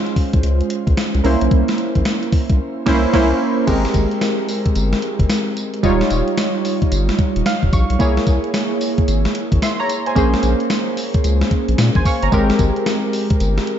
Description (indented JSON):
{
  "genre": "R&B, new jack swing",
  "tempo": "111 BPM",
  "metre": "4/4",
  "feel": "swing 63% on 16ths",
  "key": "unclear",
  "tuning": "A4 = 440 Hz",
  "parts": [
    { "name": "warm analog keys", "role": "accompaniment", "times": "0.0-13.8 s", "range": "G3 to Db6", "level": "-18 LUFS", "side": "right 2 dB", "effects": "chorus, shimmer reverb" },
    { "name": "gated 80s digital drum machine", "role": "drums", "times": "0.1-13.8 s", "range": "crash cymbal, hi-hat, kick drum, snare drum, tambourine", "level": "-19 LUFS", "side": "left 1 dB", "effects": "gated reverb, gated reverb snare" },
    { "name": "saturated sub bass", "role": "bass", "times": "0.2-13.6 s", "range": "Eb1 to Bb2", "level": "-18 LUFS", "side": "equal", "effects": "none" }
  ],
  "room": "light reverb",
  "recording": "dark, warm production, nothing above 7.8 kHz",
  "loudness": "-15 LUFS",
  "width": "side -9 dB against mid",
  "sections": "0.0-3.7 A section; 3.7-13.8 B section",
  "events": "band accent 2.6-3.7; synth keys fill 7.2-8.0",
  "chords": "0.0 Dbmaj7; 1.2 C7b9; 3.7 Abmaj9; 5.8 Eb9; 8.0 C7b9b13; 10.2 Bbm9; 12.3 Abmaj9"
}